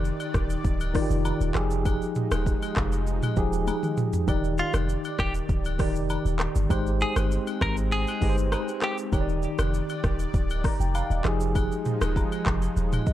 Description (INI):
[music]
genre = afrobeats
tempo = 99 BPM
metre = 4/4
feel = straight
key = Eb major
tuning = A4 = 440 Hz
[part]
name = mellow tine electric piano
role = accompaniment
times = 0.0-13.1 s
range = Eb3 to Bb5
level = -29 LUFS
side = equal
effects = medium stereo tremolo
[part]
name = lush unison pad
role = sustained chords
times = 0.0-13.1 s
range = Eb3 to D5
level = -37 LUFS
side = equal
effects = chorus, sidechain pumping
[part]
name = warm 808-style bass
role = bass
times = 0.0-13.0 s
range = D1 to Ab1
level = -27 LUFS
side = equal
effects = none
[part]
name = afro-pop drum kit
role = drums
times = 0.0-13.1 s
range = handclaps, hi-hat, kick drum, rim click, shaker, toms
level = -28 LUFS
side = equal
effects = vintage 12-bit sampler grit
[part]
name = agogo bells and woodblock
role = percussion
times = 0.2-13.1 s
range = none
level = -39 LUFS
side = left 5 dB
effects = tape echo
[part]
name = direct-recorded clean electric guitar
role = melody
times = 4.6-9.0 s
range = F4 to Bb4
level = -31 LUFS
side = equal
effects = tape echo
[sound]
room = little or no reverb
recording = echo-heavy mix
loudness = -23 LUFS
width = side -13 dB against mid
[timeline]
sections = 0.0-13.1 A section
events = drum fill 3.7-4.3; tine electric piano fill 12.8-13.1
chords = 0.0 Ebmaj7; 1.6 Fm9; 4.3 Ebmaj7; 6.7 Abmaj7; 9.1 Ebmaj7; 11.2 Fm9